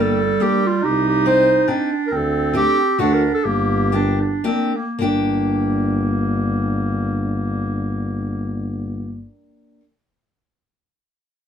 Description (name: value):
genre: alpine folk, alpine dance band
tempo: 103-141 BPM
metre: 3/4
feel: swing 54% on 8ths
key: G minor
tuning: A4 = 440 Hz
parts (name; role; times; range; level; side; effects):
- warm clarinet; melody; 0.0-4.4 s; F4 to C5; -19 LUFS; equal; none
- warm clarinet; second line; 0.0-9.2 s; G3 to Eb4; -22 LUFS; right 3 dB; none
- fingerpicked steel-string acoustic guitar; accompaniment; 0.0-9.8 s; A3 to G4; -23 LUFS; left 2 dB; none
- mellow tuba; bass; 0.0-9.2 s; G1 to D2; -22 LUFS; left 1 dB; none
room: wet studio ambience, RT60 0.5 s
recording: band playing live in one room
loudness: -17 LUFS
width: side -8 dB against mid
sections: 0.0-5.0 A section; 5.0-8.5 B section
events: slowing down 2.1-5.0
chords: 0.0 Gm; 0.8 Cm; 2.1 D7sus4; 3.0 D; 3.4 Gm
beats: 0.41 | 0.83 1.26 1.69 | 2.12 2.55 2.99 | 3.44 3.93 4.45 | 5.01 5.60 6.17 | 6.75 7.32 7.90